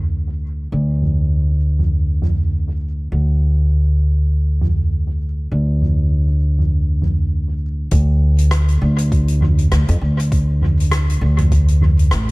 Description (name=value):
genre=ambient dub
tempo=100 BPM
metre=4/4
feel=swing 57% on 16ths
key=unclear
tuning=A4 = 439 Hz
part: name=upright bass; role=bass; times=0.0-12.3 s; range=A1 to F2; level=-15 LUFS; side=equal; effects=none
part: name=soft-mallet drum kit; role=drums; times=1.0-12.3 s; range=hi-hat, rim click, toms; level=-21 LUFS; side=right 1 dB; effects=dub echo
part: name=electronic kick drum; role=drums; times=7.9-11.7 s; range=none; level=-18 LUFS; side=equal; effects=none
room=little or no reverb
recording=none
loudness=-14 LUFS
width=side -24 dB against mid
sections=0.0-7.9 A section; 7.9-12.3 B section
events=none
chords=none